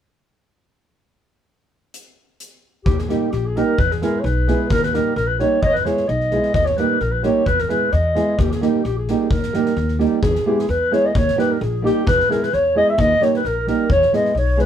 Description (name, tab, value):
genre	balkan folk, Balkan wedding band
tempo	130 BPM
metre	2/4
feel	swing 54% on 16ths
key	Eb phrygian dominant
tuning	A4 = 440 Hz
part	soft-mallet drum kit	percussion	1.9-14.6 s	hi-hat, kick drum, snare drum	-24 LUFS	left 1 dB	none
part	dark clarinet	melody	2.8-14.7 s	G4 to E5	-20 LUFS	left 1 dB	none
part	upright bass	bass	2.9-14.6 s	Bb1 to E2	-22 LUFS	left 1 dB	none
part	nylon-string guitar	accompaniment	3.1-14.7 s	G3 to G#4	-20 LUFS	right 4 dB	none
part	alto flute	second line	10.2-14.7 s	G4 to E5	-25 LUFS	left 1 dB	none
room	light reverb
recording	band playing live in one room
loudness	-16 LUFS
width	side -9 dB against mid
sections	2.9-10.2 A section; 10.2-14.7 B section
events	none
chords	1.9 N.C.; 2.9 Eb; 3.8 E; 4.7 Eb; 5.6 E; 6.5 Eb; 7.5 E; 8.4 Eb; 10.2 E; 11.1 Eb; 12.1 E; 13.0 Eb; 13.9 E